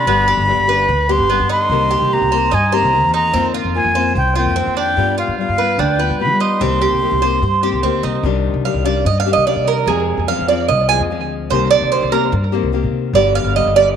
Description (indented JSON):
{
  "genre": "latin",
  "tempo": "147 BPM",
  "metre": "4/4",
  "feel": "straight",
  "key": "C minor",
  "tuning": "A4 = 437 Hz",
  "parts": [
    { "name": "reedy concert flute", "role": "melody", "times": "0.0-8.0 s", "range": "F5 to C6", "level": "-17 LUFS", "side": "equal", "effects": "none" },
    { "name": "nylon-string guitar", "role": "accompaniment", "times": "0.0-14.0 s", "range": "B2 to G4", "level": "-21 LUFS", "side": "left 12 dB", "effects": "none" },
    { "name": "Cuban tres", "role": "arpeggios", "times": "0.0-13.9 s", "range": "B3 to Ab5", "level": "-17 LUFS", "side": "right 7 dB", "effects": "tape echo" },
    { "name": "upright bass", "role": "bass", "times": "0.0-13.9 s", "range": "G1 to G3", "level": "-20 LUFS", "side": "left 1 dB", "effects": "none" }
  ],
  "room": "wet spring reverb, RT60 1.6 s, small room ambience",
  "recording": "1960s-style stereo with parts hard left and right",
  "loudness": "-13 LUFS",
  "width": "side -8 dB against mid",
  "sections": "0.0-8.2 A section; 8.2-14.0 B section",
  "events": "Cuban tres solo 8.2-14.0",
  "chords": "0.1 G; 1.7 Cm7; 3.3 F7sus4; 5.0 G7; 6.6 Cm7; 8.2 Cmadd9; 9.9 Fm; 11.5 Cm7; 13.1 G"
}